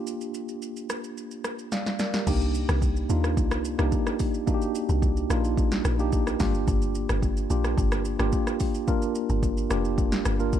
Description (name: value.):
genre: amapiano.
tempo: 109 BPM.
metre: 4/4.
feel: straight.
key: C minor.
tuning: A4 = 440 Hz.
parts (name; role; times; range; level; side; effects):
mellow tine electric piano; accompaniment; 0.0-10.6 s; Bb3 to F5; -28 LUFS; right 1 dB; medium stereo tremolo.
deep house drum kit; drums; 0.1-10.6 s; crash cymbal, hi-hat, kick drum, rim click, shaker, snare drum; -28 LUFS; equal; overdrive, vintage 12-bit sampler grit.
deep log drum bass; bass; 2.3-10.6 s; F1 to Eb2; -26 LUFS; equal; none.
room: little or no reverb.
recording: dark, warm production.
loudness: -23 LUFS.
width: side -10 dB against mid.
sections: 0.0-2.3 A section; 2.3-10.6 B section.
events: drum fill 1.7-2.3; drop 2.3-10.6.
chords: 0.0 Gm7; 2.3 Cm9; 6.4 Gm7.